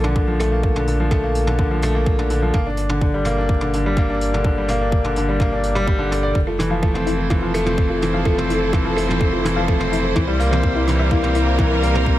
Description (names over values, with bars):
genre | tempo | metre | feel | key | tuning
piano and strings electronica | 126 BPM | 4/4 | straight | F major | A4 = 439 Hz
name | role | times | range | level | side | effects
bright grand piano | riff | 0.0-12.2 s | D3 to D5 | -20 LUFS | left 1 dB | digital delay
warm sub bass | bass | 0.0-12.2 s | F1 to C2 | -22 LUFS | equal | sidechain pumping
jazz brush drum kit | drums | 0.0-12.0 s | hi-hat, toms | -31 LUFS | equal | none
electronic kick drum | drums | 0.2-12.2 s | none | -19 LUFS | equal | none
clear symphonic string section | sustained chords | 6.5-12.2 s | G3 to C5 | -26 LUFS | right 1 dB | sidechain pumping
soft round pluck | arpeggios | 6.5-12.0 s | E3 to F5 | -26 LUFS | left 2 dB | chorus, sidechain pumping, digital delay
room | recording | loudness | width
light reverb | none | -16 LUFS | side -14 dB against mid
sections
0.0-12.2 A section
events
none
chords
0.0 Bbmaj7; 2.5 Gm; 6.4 Fmaj7; 10.2 C7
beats
0.16 | 0.64 1.11 1.59 2.07 | 2.54 3.02 3.50 3.97 | 4.45 4.92 5.40 5.88 | 6.35 6.83 7.30 7.78 | 8.26 8.73 9.21 9.69 | 10.16 10.64 11.12 11.59 | 12.07